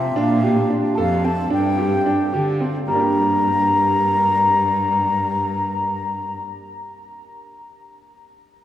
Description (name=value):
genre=contemporary instrumental, chamber music in an uneven meter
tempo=217 BPM (eighths)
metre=5/8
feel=straight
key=G minor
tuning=A4 = 440 Hz
part: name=baroque flute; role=melody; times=0.0-6.4 s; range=E5 to Bb5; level=-20 LUFS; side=left 2 dB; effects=none
part: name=warm concert grand piano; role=arpeggios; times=0.0-6.7 s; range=G3 to A4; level=-22 LUFS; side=right 2 dB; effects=none
part: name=dark cello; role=bass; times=0.0-6.4 s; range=F2 to D3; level=-23 LUFS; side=equal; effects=none
part: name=celesta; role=texture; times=0.0-6.6 s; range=G5 to D6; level=-34 LUFS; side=right 1 dB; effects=none
room=wet huge ambient reverb, RT60 7.3 s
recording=in a vast, echoing space, studio reverb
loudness=-16 LUFS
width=side -11 dB against mid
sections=0.0-2.9 A section; 2.9-5.6 B section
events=none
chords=0.2 Bbmaj7; 1.5 G5; 2.9 Gm